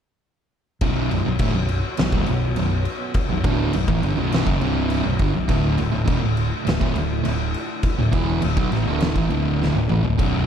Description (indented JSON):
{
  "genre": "stoner and doom metal",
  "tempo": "102 BPM",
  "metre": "4/4",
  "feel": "straight",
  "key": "B minor",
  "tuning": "A4 = 440 Hz",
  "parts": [
    { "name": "string machine, cellos", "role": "sustained chords", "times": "0.8-10.5 s", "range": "D3 to C#5", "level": "-32 LUFS", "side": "equal", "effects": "ensemble chorus" },
    { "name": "fuzz guitar", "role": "riff", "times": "0.8-10.5 s", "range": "B1 to F#3", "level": "-24 LUFS", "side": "right 9 dB", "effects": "distortion" },
    { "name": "thick fuzz guitar", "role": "riff", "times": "0.8-10.5 s", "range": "B1 to F#3", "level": "-24 LUFS", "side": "left 8 dB", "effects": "distortion" },
    { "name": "fingered electric bass", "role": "bass", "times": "0.8-10.5 s", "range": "B0 to B1", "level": "-26 LUFS", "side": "equal", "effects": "overdrive" },
    { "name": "oversized low-tuned drum kit", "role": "drums", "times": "0.8-10.3 s", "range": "crash cymbal, kick drum, snare drum, toms", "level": "-24 LUFS", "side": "equal", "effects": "none" }
  ],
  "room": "light reverb",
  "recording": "dark, warm production",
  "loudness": "-19 LUFS",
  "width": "side -8 dB against mid",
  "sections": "0.8-10.5 A section",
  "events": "drum fill 9.6-10.2",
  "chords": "0.8 Bm; 5.5 D5"
}